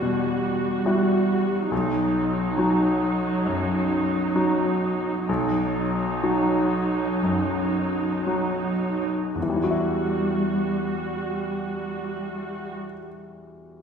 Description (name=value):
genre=cinematic, emotional film score for orchestra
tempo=53-72 BPM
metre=4/4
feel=rubato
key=E minor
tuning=A4 = 440 Hz
part: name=bright concert grand piano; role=accompaniment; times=0.0-13.8 s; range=B1 to E5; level=-25 LUFS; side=left 1 dB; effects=none
part: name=muted symphonic viola section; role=accompaniment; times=0.0-12.7 s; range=F#3 to F#4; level=-25 LUFS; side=right 2 dB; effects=none
room=wet recital hall reverb, RT60 1.7 s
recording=recorded in a church or concert hall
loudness=-22 LUFS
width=side -7 dB against mid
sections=0.0-9.4 A section; 9.4-13.6 B section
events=slowing down 0.0-9.4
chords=0.0 Emadd9; 1.7 B; 9.4 Emadd9